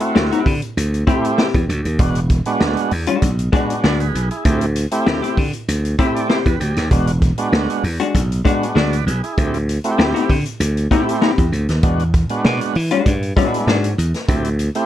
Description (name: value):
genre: funk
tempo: 98 BPM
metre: 4/4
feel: straight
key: E mixolydian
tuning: A4 = 440 Hz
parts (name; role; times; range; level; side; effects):
- tonewheel organ; stabs; 0.0-14.9 s; G#3 to E5; -21 LUFS; right 2 dB; overdrive, slow rotary speaker
- vintage drum kit; drums; 0.0-14.9 s; hi-hat, kick drum, snare drum; -20 LUFS; equal; none
- vintage hollow-body jazz guitar; accompaniment; 0.1-13.9 s; G#3 to G4; -19 LUFS; left 6 dB; none
- slap bass; bass; 0.2-14.7 s; E1 to E3; -18 LUFS; equal; none
room: light reverb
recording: dark, warm production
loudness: -15 LUFS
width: side -12 dB against mid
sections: 0.0-14.9 A section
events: tonewheel organ fill 5.7-6.9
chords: 0.0 D9sus4; 2.0 E9; 4.5 D9sus4; 6.9 E9; 9.4 D9sus4; 11.8 E9; 14.3 D9sus4